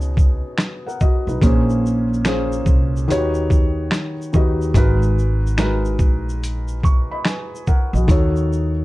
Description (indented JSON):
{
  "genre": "lo-fi hip hop",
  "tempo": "72 BPM",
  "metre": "4/4",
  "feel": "swing 64% on 16ths",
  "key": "unclear",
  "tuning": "A4 = 442 Hz",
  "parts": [
    { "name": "felt-muted upright piano", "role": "accompaniment", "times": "0.0-8.8 s", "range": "A#2 to C#6", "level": "-22 LUFS", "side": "equal", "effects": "cassette tape" },
    { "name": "upright bass", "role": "bass", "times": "0.0-8.8 s", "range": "G#1 to D#2", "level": "-20 LUFS", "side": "equal", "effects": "none" },
    { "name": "boom bap sampler-style drum kit", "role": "drums", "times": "0.0-8.8 s", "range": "finger snaps, hi-hat, kick drum, shaker, snare drum", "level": "-17 LUFS", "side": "equal", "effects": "none" }
  ],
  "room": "light reverb",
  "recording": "dark, warm production",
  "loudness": "-16 LUFS",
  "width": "side -18 dB against mid",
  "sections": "0.0-8.8 A section",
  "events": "none",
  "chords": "0.0 B69; 1.4 A#m9; 3.1 D#7alt; 4.7 G#m9; 8.1 D#m7b5"
}